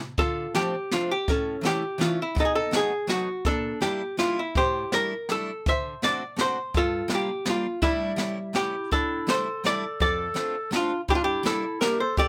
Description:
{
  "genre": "musette waltz",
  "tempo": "165 BPM",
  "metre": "3/4",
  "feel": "swing 53% on 8ths",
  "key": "D minor",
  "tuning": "A4 = 440 Hz",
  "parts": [
    { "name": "archtop guitar, miked and amplified", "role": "melody", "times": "0.2-12.3 s", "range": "G3 to E5", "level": "-28 LUFS", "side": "equal", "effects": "none" },
    { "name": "picked steel-string acoustic guitar", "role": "accompaniment", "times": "0.2-12.3 s", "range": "F2 to F#4", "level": "-35 LUFS", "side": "equal", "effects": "none" },
    { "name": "jazz brush drum kit", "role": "drums", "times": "0.2-12.3 s", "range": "hi-hat, kick drum, snare drum", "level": "-31 LUFS", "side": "equal", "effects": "none" },
    { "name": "warm clarinet", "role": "second line", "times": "8.6-12.3 s", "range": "D4 to A4", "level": "-33 LUFS", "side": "equal", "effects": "none" }
  ],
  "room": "light reverb",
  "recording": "rough home demo mix",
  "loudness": "-26 LUFS",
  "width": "mono",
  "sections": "0.2-12.3 A section",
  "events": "drum fill 0.0",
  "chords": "0.2 Dm7; 1.3 A; 2.4 B7; 3.5 Em7b5/Bb; 4.6 A7sus4; 5.7 D7; 6.7 Gm7; 7.8 A7sus4; 8.2 A7; 8.9 A7sus4; 10.0 F6; 11.1 Em7b5/G"
}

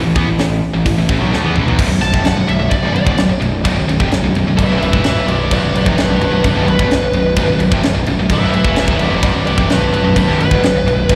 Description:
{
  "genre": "heavy metal",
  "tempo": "129 BPM",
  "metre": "4/4",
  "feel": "straight",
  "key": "B minor",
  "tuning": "A4 = 440 Hz",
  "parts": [
    { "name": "heavy high-gain guitar", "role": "riff", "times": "0.0-11.2 s", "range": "B1 to B3", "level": "-19 LUFS", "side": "equal", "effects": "distortion, slapback echo" },
    { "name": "fuzz picked electric bass", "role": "bass", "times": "0.0-11.2 s", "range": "B0 to E2", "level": "-19 LUFS", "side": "equal", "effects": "overdrive" },
    { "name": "tight metal drum kit", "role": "drums", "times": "0.2-11.2 s", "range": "crash cymbal, hi-hat, kick drum, snare drum, toms", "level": "-21 LUFS", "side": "equal", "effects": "none" },
    { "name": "high-gain lead guitar", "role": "melody", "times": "2.0-11.2 s", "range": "D4 to A5", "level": "-20 LUFS", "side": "equal", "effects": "distortion, tape echo" }
  ],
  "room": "light reverb",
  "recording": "live gig heard through the venue's PA, recital hall reverb",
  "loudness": "-14 LUFS",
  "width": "mono",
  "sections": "0.0-1.8 A section; 1.8-11.2 B section",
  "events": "drum fill 1.3-1.8; lead electric guitar solo 1.8-11.2",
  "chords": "0.0 A5; 1.8 Bm"
}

